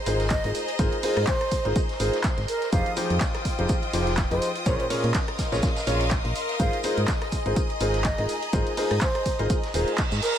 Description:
piano house; 124 BPM; 4/4; swing 56% on 16ths; Ab major; A4 = 440 Hz
string machine, violins; sustained chords; 0.0-10.4 s; C5 to Eb6; -34 LUFS; right 1 dB; ensemble chorus, sidechain pumping
rich studio string section; texture; 0.0-10.4 s; F4 to C6; -33 LUFS; left 2 dB; sidechain pumping
warm concert grand piano; riff; 0.1-9.9 s; Bb2 to Eb5; -28 LUFS; left 1 dB; sidechain pumping, ping-pong delay
solid FM bass; bass; 0.1-10.2 s; Eb1 to Bb2; -27 LUFS; equal; sidechain pumping
punchy analog drum machine; drums; 0.1-10.4 s; handclaps, hi-hat, rim click; -33 LUFS; right 1 dB
street-band drum kit; drums; 0.1-10.4 s; hi-hat, shaker, snare drum; -40 LUFS; equal; high-pass filter on hats, high-pass filter on snare, high-pass filter on perc, high-pass filter on room
breathy mellow silver concert flute; melody; 0.3-10.4 s; Bb4 to F5; -31 LUFS; right 1 dB; ping-pong delay
electronic kick drum; drums; 0.3-10.1 s; -26 LUFS; equal
reverse cymbal; sound effects; 9.7-10.4 s; -30 LUFS; right 7 dB
studio ambience; -22 LUFS; side -10 dB against mid
0.0-10.4 A section
reverse cymbal 9.7-10.4
0.0 Ab69; 2.7 Fm9; 4.7 Bbm7; 6.6 Ab69

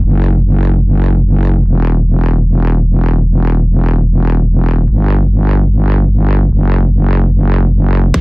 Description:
heavy wobble dubstep; free time; E minor; A4 = 440 Hz
wobble bass; bass; 0.0-8.1 s; E1 to G1; -9 LUFS; equal; chorus, overdrive
dubstep drum kit; drums; 8.1-8.2 s; hi-hat, snare drum; -13 LUFS; equal; soft clipping on snare, small room ambience
electronic kick drum; drums; 8.1-8.2 s; -11 LUFS; equal; distortion, small room ambience
little or no reverb; dense, heavily limited modern master; -9 LUFS; side -23 dB against mid
0.0-8.1 A section

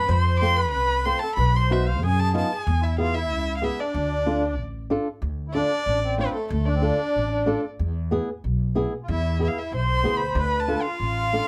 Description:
klezmer; 93 BPM; 2/4; straight; D dorian sharp4; A4 = 438 Hz
warm violin; melody; 0.0-11.5 s; A4 to D6; -29 LUFS; equal; plate reverb
accordion; second line; 0.0-11.5 s; A3 to C5; -31 LUFS; equal; light tremolo tuning
upright bass; bass; 0.0-11.4 s; A1 to F#2; -27 LUFS; equal
flamenco guitar; accompaniment; 0.4-11.5 s; B3 to C5; -28 LUFS; equal
moderate small room ambience, RT60 0.5 s; -24 LUFS; mono
0.0-5.2 A section; 5.2-11.5 B section
violin solo 5.2-11.5
0.1 F; 1.4 B; 2.7 E; 3.9 Dm; 7.8 E; 10.4 Dm

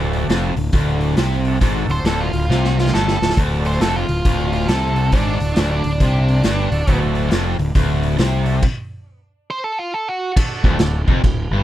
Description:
blues rock power trio and southern rock; 137 BPM; 4/4; swing 63% on 8ths; D mixolydian; A4 = 439 Hz
overdriven tonewheel organ; sustained chords; 0.0-11.0 s; D4 to A4; -31 LUFS; right 5 dB; wide subtle chorus
cranked stack guitar; riff; 0.0-11.6 s; D2 to C3; -20 LUFS; left 1 dB; overdrive
fuzz fingered electric bass; bass; 0.0-11.6 s; D1 to C2; -21 LUFS; equal; overdrive
vintage drum kit; drums; 0.1-11.4 s; crash cymbal, hi-hat, kick drum, snare drum; -20 LUFS; equal
octave-fuzz lead guitar; melody; 1.9-10.3 s; D4 to C5; -24 LUFS; right 2 dB; distortion, tape echo
little or no reverb; -15 LUFS; side -13 dB against mid
0.0-10.4 A section; 10.4-11.6 B section
drum fill 2.5-3.4; stop 8.6-10.4
0.0 D

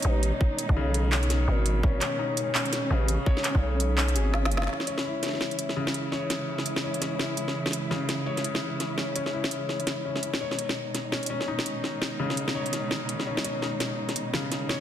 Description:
half-time drum and bass; 168 BPM; 4/4; swing 59% on 16ths, half-time; C# minor; A4 = 440 Hz
dark symphonic cello section; sustained chords; 0.0-14.8 s; B2 to E4; -33 LUFS; right 2 dB; sidechain pumping, low-pass filter
felt-muted upright piano; arpeggios; 0.0-14.8 s; C#3 to C#5; -31 LUFS; left 3 dB; low-pass filter, dub echo
growling 808-style bass; bass; 0.0-4.7 s; F#1 to B1; -25 LUFS; equal
organic electronic drum kit; drums; 0.0-14.8 s; handclaps, hi-hat, snare drum; -30 LUFS; equal; overdrive
electronic kick drum; drums; 0.4-3.6 s; -23 LUFS; equal
light reverb, small room ambience; dense, heavily limited modern master; -25 LUFS; side -10 dB against mid
0.0-4.7 A section; 4.7-14.8 B section
drum fill 4.3-4.7
0.0 G#m; 4.7 C#m; 10.4 G#m

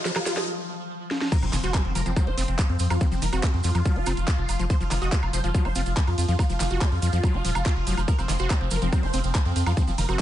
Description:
psychedelic trance; 142 BPM; 4/4; straight; A4 = 440 Hz
pulsing gated texture; sustained chords; 0.0-10.2 s; F3; -34 LUFS; equal; chorus, built-in reverb, sidechain pumping
riser and impact; sound effects; 0.0-3.0 s; -35 LUFS; left 1 dB
dense compressed supersaw; melody; 0.1-10.2 s; C4 to Eb5; -32 LUFS; right 1 dB; phaser, sidechain pumping, digital delay
overdriven acid bass; riff; 0.1-10.2 s; Eb3 to Gb4; -32 LUFS; moving between left 4 dB and right 3 dB; distortion, auto-pan, sidechain pumping, dub echo
garage drum kit; drums; 0.1-10.2 s; crash cymbal, handclaps, hi-hat, snare drum, woodblock; -31 LUFS; right 1 dB; overdrive
maracas; percussion; 0.1-10.2 s; -38 LUFS; right 6 dB
electronic kick drum; drums; 1.3-10.2 s; -22 LUFS; equal; overdrive
round analog bass; bass; 1.4-10.2 s; Eb1 to F2; -25 LUFS; equal; tube saturation
little or no reverb; nothing above 10.4 kHz; -22 LUFS; side -12 dB against mid
0.0-1.3 A section; 1.3-10.2 B section
build-up 0.0-1.3; drum fill 0.0-0.5, 1.1; riser 0.0-0.5; break 0.5-1.3; drop 1.3-10.2; impact 1.3-3.0
0.0 F5

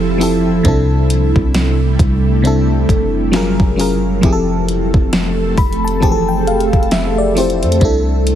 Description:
contemporary R&B; 67 BPM; 4/4; swing 58% on 16ths; A4 = 440 Hz
FM electric piano; accompaniment; 0.0-8.4 s; C3 to B5; -16 LUFS; left 2 dB; chorus, phaser
ethereal airy pad; sustained chords; 0.0-8.4 s; C3 to A#4; -20 LUFS; right 3 dB; ensemble chorus, built-in reverb, tremolo, sidechain pumping
soft 808-style bass; bass; 0.0-8.4 s; F1 to F2; -18 LUFS; equal
smooth R&B drum kit; drums; 0.2-8.4 s; hi-hat, kick drum, snare drum; -16 LUFS; equal
digital ambience; heavily compressed radio sound, multiband compression; -12 LUFS; side -10 dB against mid
0.0-8.4 A section
FM electric piano fill 5.1-7.8
0.0 Fmaj7; 0.7 C6; 3.3 F#maj7; 4.2 Fmaj7; 7.8 C6

